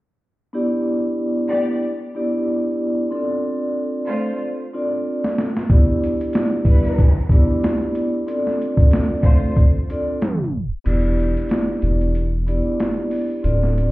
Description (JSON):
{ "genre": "hip hop, boom-bap hip-hop", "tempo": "93 BPM", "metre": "4/4", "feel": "swing 57% on 16ths", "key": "E phrygian", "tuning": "A4 = 440 Hz", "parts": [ { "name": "vibraphone with soft mallets", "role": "accompaniment", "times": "0.5-13.9 s", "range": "B3 to D5", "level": "-21 LUFS", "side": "equal", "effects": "high-pass filter, low-pass filter" }, { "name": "warm studio string section", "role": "stabs", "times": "1.5-9.5 s", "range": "G3 to D5", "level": "-26 LUFS", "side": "equal", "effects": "high-pass filter, low-pass filter, tape echo" }, { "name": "boom bap sampler-style drum kit", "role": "drums", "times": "5.2-13.9 s", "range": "crash cymbal, hi-hat, kick drum, snare drum", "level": "-15 LUFS", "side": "equal", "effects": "overdrive" }, { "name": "soft dub sub bass", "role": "bass", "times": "10.9-13.9 s", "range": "D1 to E1", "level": "-19 LUFS", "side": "equal", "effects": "none" } ], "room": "light reverb", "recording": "heard muffled through a wall, stone room reverb, EQ, tape stop", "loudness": "-17 LUFS", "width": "side -18 dB against mid", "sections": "0.5-10.9 A section; 10.9-13.9 B section", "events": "drum fill 5.0-5.7; tape stop 10.2-10.9; kick muted 10.9-13.9", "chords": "0.5 Em7; 3.1 Dm7; 5.7 Em7; 8.3 Dm7; 10.9 Em7", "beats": "| 0.53 1.18 1.82 2.47 | 3.11 3.76 4.41 5.05 | 5.70 6.34 6.99 7.63 | 8.28 8.92 9.57 10.21 | 10.86 11.50 12.15 12.79 | 13.44" }